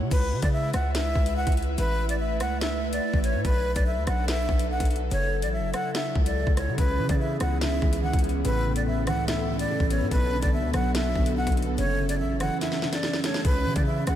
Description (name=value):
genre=hip hop, drill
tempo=144 BPM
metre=4/4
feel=half-time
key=C# phrygian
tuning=A4 = 440 Hz
part: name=airy breathy pad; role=sustained chords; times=0.0-13.4 s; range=C#3 to E5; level=-32 LUFS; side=left 1 dB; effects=chorus
part: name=hard-hitting 808-style bass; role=bass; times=0.0-14.2 s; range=F#1 to C#3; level=-28 LUFS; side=equal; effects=none
part: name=breathy jazz flute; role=melody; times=0.1-14.2 s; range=B4 to F#5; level=-30 LUFS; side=equal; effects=analog delay
part: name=drill drum kit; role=drums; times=0.1-14.2 s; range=crash cymbal, hi-hat, kick drum, rim click, snare drum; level=-28 LUFS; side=equal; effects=none
part: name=dark grand piano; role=accompaniment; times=6.8-14.2 s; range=F#2 to C#4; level=-29 LUFS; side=right 2 dB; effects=ensemble chorus
room=light reverb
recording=none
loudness=-23 LUFS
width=side -11 dB against mid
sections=0.1-13.4 A section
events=drum fill 12.6-13.4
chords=0.1 C#m7; 1.8 Aadd9; 3.4 Bm7; 5.1 F#m7; 6.8 C#m7; 8.4 Aadd9; 10.1 Bm7; 11.8 F#m7; 13.4 C#m